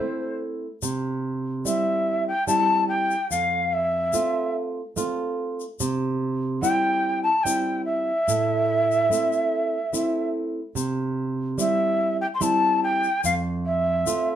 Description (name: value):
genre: andean folk, Andean ensemble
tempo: 72 BPM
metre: 3/4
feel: straight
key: unclear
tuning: A4 = 441 Hz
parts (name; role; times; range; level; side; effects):
- breathy large quena; melody; 0.0-14.4 s; C5 to C6; -22 LUFS; equal; none
- nylon-string guitar; accompaniment; 0.0-14.4 s; F2 to F4; -26 LUFS; right 2 dB; none
- tube shaker; percussion; 0.8-14.3 s; none; -31 LUFS; left 8 dB; none
room: wet studio reverb, RT60 0.6 s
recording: band playing live in one room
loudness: -22 LUFS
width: side -10 dB against mid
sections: 0.8-14.4 A section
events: break 0.0-0.8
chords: 0.0 Am; 0.8 C; 3.3 F; 5.8 C; 8.3 Am; 10.8 C; 13.2 F